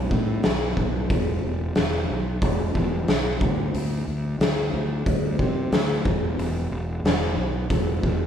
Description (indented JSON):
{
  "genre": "quiet-loud alternative rock",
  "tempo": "91 BPM",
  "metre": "4/4",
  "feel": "straight",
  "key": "unclear",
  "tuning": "A4 = 440 Hz",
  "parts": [
    { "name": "fuzz fingered electric bass", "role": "bass", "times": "0.0-8.3 s", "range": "E1 to C3", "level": "-26 LUFS", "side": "equal", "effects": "overdrive" },
    { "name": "oversized low-tuned drum kit", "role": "drums", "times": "0.1-8.2 s", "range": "hi-hat, kick drum, snare drum", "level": "-23 LUFS", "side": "equal", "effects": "none" }
  ],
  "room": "light reverb",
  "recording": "band playing live in one room",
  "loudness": "-21 LUFS",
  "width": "side -9 dB against mid",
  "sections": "0.0-8.3 A section",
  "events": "none",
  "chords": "none"
}